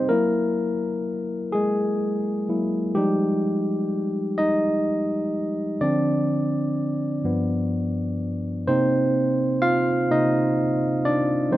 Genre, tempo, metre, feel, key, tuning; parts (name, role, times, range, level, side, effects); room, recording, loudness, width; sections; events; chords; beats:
R&B; 42 BPM (dotted quarters); 6/8; straight; C minor; A4 = 440 Hz
barky tine electric piano; solo; 0.0-11.6 s; G2 to F5; -21 LUFS; equal; overdrive
light reverb, digital ambience; rough home demo mix; -21 LUFS; side -15 dB against mid
0.0-8.7 A section; 8.7-11.6 B section
tine electric piano solo 0.0-8.7, 8.7-11.6
0.1 F#9; 3.0 Fm9; 5.8 Dm7; 7.2 G7; 8.7 Cm9
| 0.09 1.52 | 2.95 4.38 | 5.81 7.24 | 8.66 10.09 | 11.52